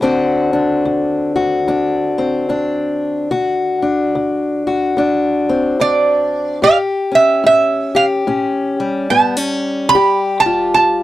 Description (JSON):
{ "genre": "acoustic country blues, solo or duo", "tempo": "73 BPM", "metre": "4/4", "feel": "swing 61% on 8ths", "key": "D mixolydian", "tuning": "A4 = 439 Hz", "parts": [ { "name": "fingerpicked acoustic archtop guitar", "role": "accompaniment", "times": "0.0-11.0 s", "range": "D2 to G4", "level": "-15 LUFS", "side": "left 2 dB", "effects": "none" }, { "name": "lap resonator guitar", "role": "melody", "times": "5.8-11.0 s", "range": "D5 to B5", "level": "-12 LUFS", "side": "right 3 dB", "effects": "none" } ], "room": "light reverb", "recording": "dry, close 1970s-style studio recording", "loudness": "-13 LUFS", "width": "side -14 dB against mid", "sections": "0.0-11.0 A section", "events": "none", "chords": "0.0 D7; 6.6 A7; 9.9 G7", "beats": "| 0.02 0.84 1.67 2.49 | 3.31 4.14 4.97 5.79 | 6.62 7.45 8.28 9.10 | 9.93 10.76" }